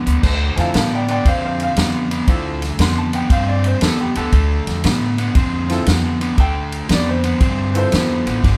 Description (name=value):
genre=electric blues shuffle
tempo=117 BPM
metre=4/4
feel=swing 67% on 8ths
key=D minor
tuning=A4 = 436 Hz
part: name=overdriven electric guitar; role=riff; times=0.0-8.6 s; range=G2 to C4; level=-24 LUFS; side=equal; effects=none
part: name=upright bass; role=bass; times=0.1-8.6 s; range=G1 to A2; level=-22 LUFS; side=equal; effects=none
part: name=vintage drum kit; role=drums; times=0.1-8.6 s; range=crash cymbal, hi-hat, kick drum, ride cymbal, snare drum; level=-22 LUFS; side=equal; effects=none
part: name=clear grand piano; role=accompaniment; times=0.6-8.6 s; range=C4 to C6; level=-26 LUFS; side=equal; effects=none
room=light reverb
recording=band playing live in one room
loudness=-17 LUFS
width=mono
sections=0.2-8.6 A section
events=none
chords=0.2 Dm7